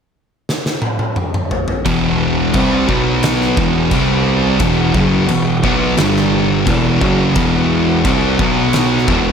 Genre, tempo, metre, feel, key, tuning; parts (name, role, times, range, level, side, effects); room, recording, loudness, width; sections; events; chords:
stoner and doom metal; 87 BPM; 4/4; straight; E minor; A4 = 440 Hz
oversized low-tuned drum kit; drums; 0.5-9.2 s; crash cymbal, kick drum, snare drum, toms; -19 LUFS; equal
analog drone; sustained chords; 1.8-9.3 s; C3 to F#5; -27 LUFS; left 2 dB
biting overdriven guitar; riff; 1.9-9.3 s; E2 to C4; -20 LUFS; equal
thick fuzz guitar; riff; 1.9-9.3 s; E2 to C4; -17 LUFS; left 9 dB; distortion
thick fuzz guitar; riff; 1.9-9.3 s; E2 to C4; -17 LUFS; right 10 dB; distortion
fuzz picked electric bass; bass; 1.9-9.3 s; E1 to C2; -21 LUFS; equal; overdrive
light reverb, studio reverb; -12 LUFS; side -7 dB against mid
0.0-1.9 A section; 1.9-9.3 B section
drum fill 0.5-1.9
0.0 N.C.; 1.9 Em; 2.9 B5; 3.6 E5; 3.9 C5; 4.6 E5; 6.0 G5; 6.7 Em; 8.4 B5